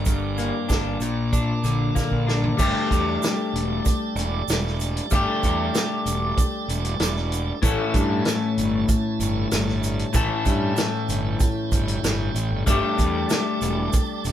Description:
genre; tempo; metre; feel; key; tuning
psychedelic rock; 95 BPM; 4/4; straight; unclear; A4 = 441 Hz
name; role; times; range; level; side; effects
tonewheel organ; sustained chords; 0.0-14.3 s; Bb3 to A5; -32 LUFS; right 7 dB; slow rotary speaker, overdrive
electric guitar at the edge of break-up; riff; 0.0-14.3 s; G2 to A4; -24 LUFS; left 3 dB; phaser
fuzz fingered electric bass; bass; 0.0-14.3 s; E1 to G2; -26 LUFS; right 1 dB; overdrive
vintage drum kit; drums; 0.1-14.3 s; crash cymbal, hi-hat, kick drum, snare drum, toms; -24 LUFS; right 1 dB; none
tube shaker; percussion; 0.1-14.3 s; none; -35 LUFS; right 11 dB; none
room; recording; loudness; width
light reverb; band playing live in one room; -20 LUFS; side -11 dB against mid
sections
0.0-2.6 A section; 2.6-14.3 B section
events
drum fill 2.0-2.6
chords
0.0 Gm; 1.0 Bb; 2.6 Gsus2; 7.6 A; 12.7 Gsus2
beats
| 0.06 0.69 1.32 1.96 | 2.59 3.22 3.85 4.48 | 5.11 5.74 6.37 7.00 | 7.63 8.26 8.89 9.52 | 10.15 10.78 11.41 12.04 | 12.67 13.30 13.93

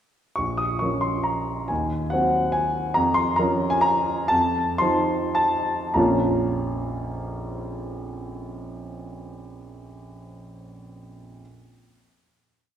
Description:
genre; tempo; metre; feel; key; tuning
classical, piano waltz; 93-149 BPM; 3/4; rubato; Bb minor; A4 = 440 Hz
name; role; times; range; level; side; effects
warm grand piano; solo; 0.4-11.4 s; Bb1 to Eb6; -22 LUFS; equal; none
room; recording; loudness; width
wet recital hall reverb, RT60 1.6 s; heard from further back in the room; -21 LUFS; side -9 dB against mid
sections
0.4-6.0 A section; 6.0-9.3 final chord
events
slowing down 2.3-6.0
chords
0.4 Bbm; 1.7 Cdim/Eb; 3.0 Bbm/F; 4.3 F7; 6.0 Bbm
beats
| 0.38 0.82 1.27 | 1.70 2.13 2.55 | 2.96 3.39 3.84 | 4.31 4.81 5.37 | 5.96 6.50 7.07 | 7.61 8.15 8.71

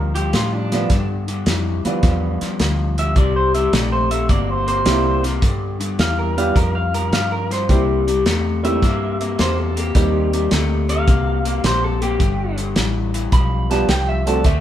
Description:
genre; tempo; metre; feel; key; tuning
electric blues shuffle; 106 BPM; 4/4; swing 68% on 8ths; unclear; A4 = 440 Hz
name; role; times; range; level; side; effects
electric guitar through a small old amp; second line; 0.0-14.6 s; D4 to B5; -23 LUFS; right 1 dB; none
electric guitar through a small old amp; riff; 0.0-14.6 s; G2 to Bb3; -23 LUFS; left 5 dB; none
vintage muted fingered electric bass; bass; 0.0-14.6 s; G1 to A2; -21 LUFS; equal; none
warm soul drum kit; drums; 0.2-14.6 s; hi-hat, kick drum, snare drum; -19 LUFS; equal; none
dark upright piano; accompaniment; 0.7-14.4 s; F3 to A4; -22 LUFS; right 4 dB; none
room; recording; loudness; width
moderate stone room reverb, RT60 1.2 s; band playing live in one room; -16 LUFS; side -11 dB against mid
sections
0.0-14.6 A section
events
clean electric guitar solo 0.0-14.6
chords
0.0 G7; 3.2 C7; 5.4 G7(no3); 7.7 C7; 9.9 Cm7; 12.2 G7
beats
0.34 | 0.91 1.47 2.04 2.60 | 3.17 3.73 4.30 4.86 | 5.43 6.00 6.56 7.13 | 7.69 8.26 8.82 9.38 | 9.95 10.51 11.07 11.64 | 12.20 12.76 13.32 13.89 | 14.45

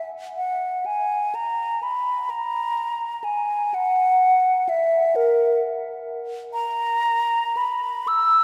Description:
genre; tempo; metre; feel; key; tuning
classical, free, expressive piece for unaccompanied flute; 36-44 BPM (dotted quarters); 6/8; rubato; unclear; A4 = 440 Hz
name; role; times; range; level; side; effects
mellow hollow silver concert flute; solo; 0.0-8.4 s; A#4 to E6; -22 LUFS; equal; none
room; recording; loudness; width
wet cathedral reverb, RT60 5.3 s; recorded in a church or concert hall; -23 LUFS; mono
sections
0.0-8.4 A section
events
none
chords
none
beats
| 0.86 2.29 | 3.73 5.15 | 6.54 8.09

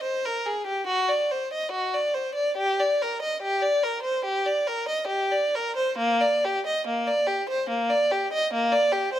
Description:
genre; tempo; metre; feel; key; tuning
classical, baroque-style suite movement for unaccompanied violin; 71 BPM; 4/4; rubato; G minor from 6.0 s; A4 = 440 Hz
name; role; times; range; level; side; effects
warm violin; solo; 0.0-9.2 s; Bb3 to Eb5; -23 LUFS; equal; none
room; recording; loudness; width
moderate recital hall reverb, RT60 1.3 s; close, detailed microphones; -23 LUFS; side -11 dB against mid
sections
0.0-9.2 A section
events
none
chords
none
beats
0.02 0.86 1.71 | 2.56 3.42 4.25 5.09 | 5.96 6.83 7.67 8.50

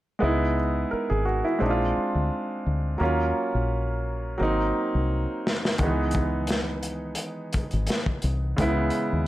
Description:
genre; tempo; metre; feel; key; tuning
R&B, neo-soul; 86 BPM; 4/4; swing 54% on 16ths; C# dorian; A4 = 442 Hz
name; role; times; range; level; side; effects
clear baby grand piano; accompaniment; 0.2-9.3 s; C#3 to A#4; -26 LUFS; right 1 dB; none
deep dub fingered electric bass; bass; 0.2-9.3 s; G#1 to D#2; -26 LUFS; left 1 dB; none
crunchy breakbeat drum kit; drums; 5.5-9.1 s; hi-hat, kick drum, snare drum; -27 LUFS; left 1 dB; none
room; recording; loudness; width
light reverb; none; -23 LUFS; side -15 dB against mid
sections
0.2-9.3 A section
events
drum fill 4.4-5.8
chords
0.2 C#m9; 1.6 A#7; 3.0 D#m7; 4.4 G#7; 5.8 C#m9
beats
| 0.21 0.91 1.61 2.31 | 3.00 3.70 4.40 5.09 | 5.79 6.49 7.19 7.89 | 8.58

